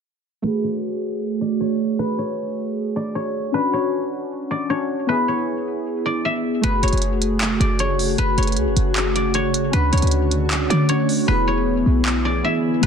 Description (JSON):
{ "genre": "hip hop, trap", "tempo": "155 BPM", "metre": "4/4", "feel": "half-time", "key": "F# minor", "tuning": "A4 = 440 Hz", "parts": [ { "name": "guzheng", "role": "melody", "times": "0.4-12.9 s", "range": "B4 to E5", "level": "-25 LUFS", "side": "equal", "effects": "low-pass filter, ping-pong delay" }, { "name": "warbly lo-fi synth keys", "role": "accompaniment", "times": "0.4-12.9 s", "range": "A3 to G#4", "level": "-23 LUFS", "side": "equal", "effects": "chorus, phaser, low-pass filter" }, { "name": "glassy FM pad", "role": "sustained chords", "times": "6.6-12.9 s", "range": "C#3 to C#5", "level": "-24 LUFS", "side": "equal", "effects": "ensemble chorus, built-in reverb" }, { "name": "short 808-style bass", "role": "bass", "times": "6.6-12.9 s", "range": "E1 to D3", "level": "-21 LUFS", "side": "equal", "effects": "none" }, { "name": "trap drum kit", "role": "drums", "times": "6.6-12.9 s", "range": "handclaps, hi-hat", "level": "-25 LUFS", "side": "right 1 dB", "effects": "vintage 12-bit sampler grit" } ], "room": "light reverb", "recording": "dense, heavily limited modern master", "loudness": "-18 LUFS", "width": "side -7 dB against mid", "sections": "0.4-6.6 A section; 6.6-12.9 B section", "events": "filter sweep 0.4-6.6; hi-hats muted 11.3-12.8", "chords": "0.4 F#madd9; 3.5 Dmaj7; 5.1 E; 6.6 F#madd9; 9.7 Dmaj7; 11.3 E", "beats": "| 0.44 0.83 1.22 1.60 | 1.99 2.38 2.77 3.15 | 3.54 3.93 4.31 4.70 | 5.09 5.47 5.86 6.25 | 6.64 7.02 7.41 7.80 | 8.18 8.57 8.96 9.35 | 9.73 10.12 10.51 10.89 | 11.28 11.67 12.05 12.44 | 12.83" }